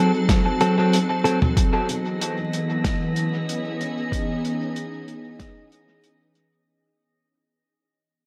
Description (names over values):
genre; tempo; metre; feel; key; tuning
ambient dub; 94 BPM; 4/4; swing 54% on 16ths; C# minor; A4 = 436 Hz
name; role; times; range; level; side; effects
soft additive organ-like pad; sustained chords; 0.0-6.7 s; E3 to A4; -27 LUFS; equal; ensemble chorus, built-in reverb
clean electric guitar; stabs; 0.0-1.4 s; F#3 to A4; -24 LUFS; equal; dub echo
cloth-damped thuddy drum kit; drums; 0.3-6.5 s; hi-hat, snare drum, toms; -29 LUFS; equal; dub echo
electronic kick drum; drums; 0.3-5.5 s; none; -25 LUFS; equal; none
drifting glass-harmonics texture; texture; 1.8-6.7 s; D#5; -37 LUFS; equal; chorus, built-in reverb
room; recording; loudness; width
light reverb, small room ambience; echo-heavy mix, vinyl crackle; -23 LUFS; mono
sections
0.0-1.6 A section; 1.6-6.7 B section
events
fade-out 1.6-6.7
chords
0.0 G#7b9; 1.6 C#m9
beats
0.29 0.93 | 1.57 2.20 2.84 3.48 | 4.12 4.76 5.39 6.03